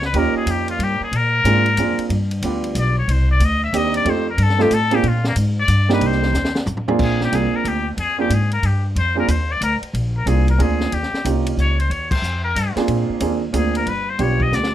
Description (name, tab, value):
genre	jazz, small-group swing and bop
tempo	184 BPM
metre	3/4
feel	swing 64% on 8ths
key	Bb mixolydian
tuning	A4 = 440 Hz
part	trumpet with straight mute	melody	0.0-14.7 s	Bb3 to E5	-22 LUFS	left 4 dB	none
part	upright bass	bass	0.0-14.7 s	G1 to Bb2	-20 LUFS	equal	none
part	compact cocktail drum kit	drums	0.0-14.7 s	crash cymbal, hi-hat, kick drum, ride cymbal, snare drum, toms	-28 LUFS	equal	none
part	clear concert grand piano	accompaniment	0.1-14.7 s	G3 to A4	-21 LUFS	right 4 dB	none
room	light reverb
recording	none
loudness	-16 LUFS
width	side -12 dB against mid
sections	0.0-7.0 A section; 7.0-14.7 B section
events	muted trumpet solo 0.0-7.0; drum fill 6.3-7.0, 14.5; band accent 12.1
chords	0.0 Eb7; 1.1 Bb7; 2.1 G7; 3.1 Cm7; 4.1 F7; 5.0 Bb7(no3); 5.7 G; 6.0 Cm7; 6.7 F5; 7.0 Bb7; 10.9 Eb7; 12.9 Bb7; 13.9 G7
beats	| 0.14 0.46 0.79 | 1.12 1.44 1.77 | 2.10 2.42 2.75 | 3.08 3.40 3.73 | 4.05 4.38 4.71 | 5.03 5.36 5.69 | 6.01 6.34 6.67 | 6.99 7.32 7.65 | 7.97 8.30 8.63 | 8.96 9.28 9.61 | 9.94 10.27 10.59 | 10.92 11.25 11.57 | 11.90 12.23 12.55 | 12.88 13.21 13.54 | 13.86 14.19 14.52